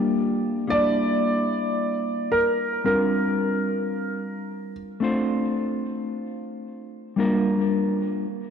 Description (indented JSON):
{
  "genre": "chillout",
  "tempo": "free time",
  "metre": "none",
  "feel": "none",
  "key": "G dorian",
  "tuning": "A4 = 443 Hz",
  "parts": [
    { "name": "mellow electric guitar", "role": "accompaniment", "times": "0.0-8.3 s", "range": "G3 to A5", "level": "-24 LUFS", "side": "left 1 dB", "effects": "auto-pan, ping-pong delay" },
    { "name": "warm concert grand piano", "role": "melody", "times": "0.7-4.7 s", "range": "Bb4 to D5", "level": "-24 LUFS", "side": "right 1 dB", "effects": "vintage 12-bit sampler grit, ping-pong delay" }
  ],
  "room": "wet lush hall reverb, RT60 2.6 s",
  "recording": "dark, warm production",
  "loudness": "-22 LUFS",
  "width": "side -7 dB against mid",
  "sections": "0.7-8.5 A section",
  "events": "break 8.3",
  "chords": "0.0 Bb6; 0.7 Gm69; 2.9 C9sus4; 5.0 Dm7; 7.2 Bb6",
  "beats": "free time"
}